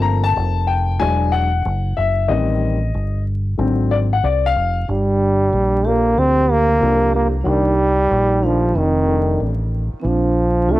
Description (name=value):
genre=hip hop, jazz-hop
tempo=93 BPM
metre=4/4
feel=swing 66% on 16ths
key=G minor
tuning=A4 = 441 Hz
part: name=dark grand piano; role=accompaniment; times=0.0-10.8 s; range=D3 to Bb5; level=-21 LUFS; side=left 6 dB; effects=cassette tape
part: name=deep dub fingered electric bass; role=bass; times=0.0-10.8 s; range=E1 to D2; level=-19 LUFS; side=equal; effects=none
part: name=warm trombone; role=melody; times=4.9-10.8 s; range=Eb3 to C4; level=-17 LUFS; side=right 1 dB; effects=none
part: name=vibraphone with medium mallets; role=second line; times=4.9-10.8 s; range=C4 to G4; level=-24 LUFS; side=right 6 dB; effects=cassette tape
room=light reverb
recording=home recording on cassette, vinyl crackle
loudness=-15 LUFS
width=side -16 dB against mid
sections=0.0-4.9 A section; 4.9-10.8 B section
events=grand piano solo 0.0-4.9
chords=0.0 Gm11; 1.0 E7; 2.3 Am7b5; 3.6 Ab7#11; 4.9 Gm7; 7.5 Cm9; 8.7 F13; 10.0 Bbmaj9